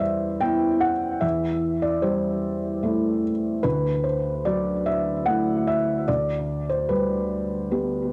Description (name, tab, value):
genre	neoclassical minimalist piano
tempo	74 BPM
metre	3/4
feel	rubato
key	unclear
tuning	A4 = 440 Hz
part	felt-muted upright piano	solo	0.0-8.1 s	D2 to G5	-24 LUFS	equal	cassette tape, analog delay
room	wet studio reverb, RT60 0.6 s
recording	home recording on cassette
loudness	-24 LUFS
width	mono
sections	0.0-8.1 A section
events	none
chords	0.0 Em; 1.2 Am7/E; 3.6 Dadd9; 6.1 G/D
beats	0.42 | 1.23 2.04 2.84 | 3.65 4.46 5.27 | 6.08 6.89 7.70